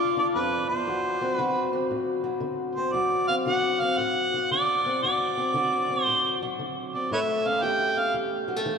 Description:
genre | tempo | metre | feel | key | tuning
acoustic country blues, solo or duo | 115 BPM | 4/4 | swing 66% on 8ths | D mixolydian | A4 = 439 Hz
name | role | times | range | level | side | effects
mellow harmonica | melody | 0.0-8.2 s | B4 to G5 | -25 LUFS | right 2 dB | none
fingerpicked acoustic archtop guitar | accompaniment | 0.0-8.8 s | D2 to G4 | -27 LUFS | left 2 dB | none
room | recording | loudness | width
wet cathedral reverb, RT60 4.9 s | recorded in a church or concert hall | -23 LUFS | side -6 dB against mid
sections
0.0-8.8 A section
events
none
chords
0.0 N.C.; 0.9 D7; 7.1 A7

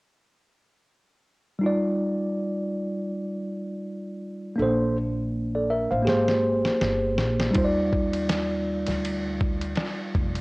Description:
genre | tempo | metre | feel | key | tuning
hip hop, jazz-hop | 81 BPM | 4/4 | swing 57% on 16ths | Eb major | A4 = 439 Hz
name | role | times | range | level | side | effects
mellow tine electric piano | accompaniment | 1.6-10.4 s | G3 to F5 | -24 LUFS | equal | medium stereo tremolo
upright bass | bass | 4.6-10.4 s | F1 to Eb2 | -30 LUFS | equal | none
dusty soul sampler-style drum kit | drums | 6.1-10.4 s | hi-hat, kick drum, ride cymbal, snare drum | -28 LUFS | equal | vintage 12-bit sampler grit, cassette tape
room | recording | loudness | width
moderate spring reverb, RT60 1.6 s, digital ambience | home recording on cassette | -23 LUFS | side -24 dB against mid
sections
1.6-10.4 A section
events
drum fill 6.1-7.6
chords
1.6 Ebmaj9; 4.6 Bbmaj9; 6.1 Abmaj9; 7.6 Ebmaj9

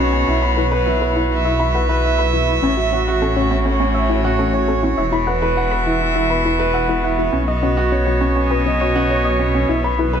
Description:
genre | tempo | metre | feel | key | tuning
piano and strings electronica | 102 BPM | 4/4 | straight | unclear | A4 = 438 Hz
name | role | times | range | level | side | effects
rich string quartet | sustained chords | 0.0-10.2 s | A2 to E5 | -21 LUFS | equal | none
soft round pluck | arpeggios | 0.0-10.1 s | C#4 to B5 | -25 LUFS | left 5 dB | chorus, cassette tape, digital delay
dark baby grand piano | riff | 0.0-10.2 s | C#4 to B5 | -19 LUFS | right 2 dB | digital delay
dark detuned saw bass | bass | 0.0-10.2 s | E1 to B1 | -21 LUFS | equal | none
room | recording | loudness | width
light reverb, small room ambience | none | -15 LUFS | side -8 dB against mid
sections
0.0-10.2 A section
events
none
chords
0.3 Esus2/B; 2.6 A6; 5.0 Esus2; 7.3 Badd9; 9.7 E5/B

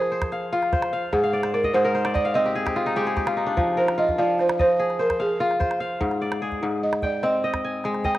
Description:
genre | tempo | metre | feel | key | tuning
west african traditional, West African string and xylophone music | 98 BPM (dotted quarters) | 12/8 | straight | unclear | A4 = 440 Hz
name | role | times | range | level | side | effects
balafon | melody | 0.0-8.2 s | Ab4 to G5 | -23 LUFS | right 2 dB | none
kora | arpeggios | 0.0-8.2 s | Ab2 to Ab5 | -23 LUFS | left 2 dB | cassette tape
calabash | percussion | 0.0-8.2 s | none | -29 LUFS | right 1 dB | none
room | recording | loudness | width
moderate lush hall reverb, RT60 2.2 s | home recording on cassette | -20 LUFS | side -15 dB against mid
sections
0.0-8.2 A section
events
balafon solo 0.0-8.2; kora fill 1.2-3.6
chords
0.0 Fm; 1.1 Ab; 3.6 Fm; 6.0 Ab

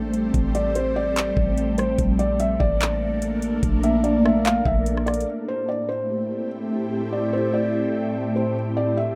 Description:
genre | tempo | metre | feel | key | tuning
hip hop, atmospheric cloud-rap | 146 BPM | 4/4 | half-time | unclear | A4 = 440 Hz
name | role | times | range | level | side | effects
ethereal airy pad | sustained chords | 0.0-9.2 s | A2 to G4 | -26 LUFS | equal | ensemble chorus, built-in reverb, phaser, sidechain pumping
soft 808-style bass | bass | 0.0-5.2 s | A1 to Bb1 | -28 LUFS | equal | none
smooth R&B drum kit | drums | 0.1-5.3 s | handclaps, hi-hat, kick drum, rim click | -28 LUFS | equal | none
felt-muted upright piano | melody | 0.5-9.2 s | C5 to F5 | -28 LUFS | equal | digital delay
room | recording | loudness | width
light reverb | rough home demo mix | -23 LUFS | mono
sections
0.0-5.3 A section; 5.3-9.2 B section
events
none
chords
0.0 Am7; 2.0 Bbmaj7; 5.3 Am7; 8.6 Bbmaj7

